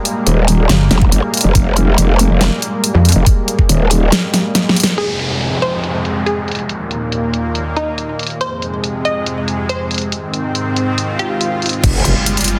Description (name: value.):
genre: heavy wobble dubstep.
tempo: 140 BPM.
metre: 4/4.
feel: half-time.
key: F minor.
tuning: A4 = 437 Hz.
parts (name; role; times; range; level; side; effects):
supersaw pad; sustained chords; 0.0-12.6 s; Eb2 to F4; -22 LUFS; equal; sidechain pumping, low-pass filter.
dubstep drum kit; drums; 0.1-12.6 s; crash cymbal, hi-hat, snare drum; -19 LUFS; equal; low-pass filter on hats, low-pass filter on snare, low-pass filter on cymbals.
growl bass; bass; 0.3-4.1, 11.8-12.1 s; Eb1 to G1; -14 LUFS; equal; chorus, overdrive.
pulsing pluck wobble bass; bass; 0.7-3.1 s; G1 to F2; -12 LUFS; equal; chorus, overdrive.
electronic kick drum; drums; 1.0-3.7, 11.8-11.9 s; none; -15 LUFS; equal; none.
unison pluck; melody; 5.0-11.8 s; Eb4 to Eb5; -24 LUFS; equal; delay.
downlifter, swell and impact; sound effects; 5.0-12.6 s; none; -25 LUFS; equal; none.
room: light reverb, digital ambience.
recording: dense, heavily limited modern master.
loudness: -15 LUFS.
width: mono.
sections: 0.0-5.0 A section; 5.0-11.8 B section.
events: drop 0.0-5.0; drum fill 4.5-5.0; band accent 4.8; filter sweep on supersaw synth 5.0-11.8; swell 11.1-11.8; impact 11.8-12.6.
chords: 0.0 Fmadd9; 5.0 Fm; 6.7 Eb5; 8.4 Fm; 10.1 Ab; 11.8 Fmadd9.